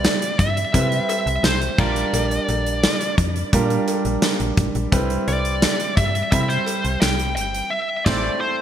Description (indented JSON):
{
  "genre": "1980s-style pop",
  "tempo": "86 BPM",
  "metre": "4/4",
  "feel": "straight",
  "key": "C major",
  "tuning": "A4 = 440 Hz",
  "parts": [
    { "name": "smooth overdriven lead guitar", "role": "melody", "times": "0.0-8.6 s", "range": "C5 to G5", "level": "-24 LUFS", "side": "equal", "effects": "digital delay" },
    { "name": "clear grand piano", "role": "accompaniment", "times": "0.0-8.6 s", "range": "G3 to B5", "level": "-25 LUFS", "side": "right 3 dB", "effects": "wide subtle chorus" },
    { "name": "slap-like FM bass", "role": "bass", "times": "0.0-8.3 s", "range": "G1 to C3", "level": "-24 LUFS", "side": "left 1 dB", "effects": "none" },
    { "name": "big rock drum kit", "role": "drums", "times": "0.0-8.3 s", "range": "crash cymbal, hi-hat, kick drum, snare drum, tambourine", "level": "-21 LUFS", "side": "equal", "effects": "gated reverb" },
    { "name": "cowbell", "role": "percussion", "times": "0.0-7.2 s", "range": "none", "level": "-36 LUFS", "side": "left 4 dB", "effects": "none" }
  ],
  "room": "moderate plate reverb, RT60 2.8 s",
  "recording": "bright 1980s-style digital production",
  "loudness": "-18 LUFS",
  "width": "side -10 dB against mid",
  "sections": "0.0-8.6 A section",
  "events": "band accent 7.7-8.6",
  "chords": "0.0 Cmaj7; 1.8 Gm7/Bb; 4.9 Cmaj7; 7.7 Am"
}